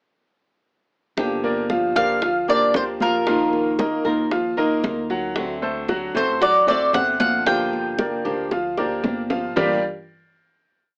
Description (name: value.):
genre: latin, Cuban son and guajira.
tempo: 114 BPM.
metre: 4/4.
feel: straight.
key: G minor.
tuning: A4 = 441 Hz.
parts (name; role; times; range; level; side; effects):
flamenco guitar; accompaniment; 1.2-9.8 s; G2 to Bb4; -28 LUFS; equal; none.
upright bass; bass; 1.2-9.8 s; G1 to Eb2; -38 LUFS; equal; none.
bongos; percussion; 1.2-9.7 s; none; -30 LUFS; equal; none.
congas; percussion; 1.2-9.7 s; none; -32 LUFS; equal; none.
bright grand piano; arpeggios; 1.4-9.8 s; F3 to F#5; -26 LUFS; equal; none.
Cuban tres; melody; 2.0-8.5 s; Bb4 to G5; -22 LUFS; equal; none.
room: moderate studio ambience, RT60 0.5 s.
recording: AM radio sound.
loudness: -21 LUFS.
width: mono.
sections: 1.2-9.6 A section; 9.6-11.0 final chord.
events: drum fill 8.5-9.6.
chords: 1.2 Gm7; 3.3 Ebsus2; 5.4 D7; 7.5 Gm7.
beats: | 1.18 1.70 2.22 2.74 | 3.27 3.79 4.31 4.84 | 5.36 5.89 6.41 6.94 | 7.46 7.99 8.52 9.04 | 9.57.